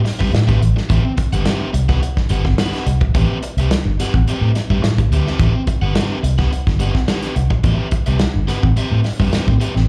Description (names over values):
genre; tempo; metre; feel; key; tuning
funk; 107 BPM; 4/4; straight; A dorian; A4 = 440 Hz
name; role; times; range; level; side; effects
crunchy overdriven guitar; accompaniment; 0.0-9.8 s; C4 to F#5; -26 LUFS; equal; slapback echo
vintage muted fingered electric bass; bass; 0.0-9.9 s; G1 to A2; -18 LUFS; equal; none
warm soul drum kit; drums; 0.1-9.8 s; hi-hat, kick drum, snare drum; -21 LUFS; equal; none
room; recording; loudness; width
small room ambience; live gig heard through the venue's PA, club reverb; -17 LUFS; mono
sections
0.0-9.9 A section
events
none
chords
0.0 Am9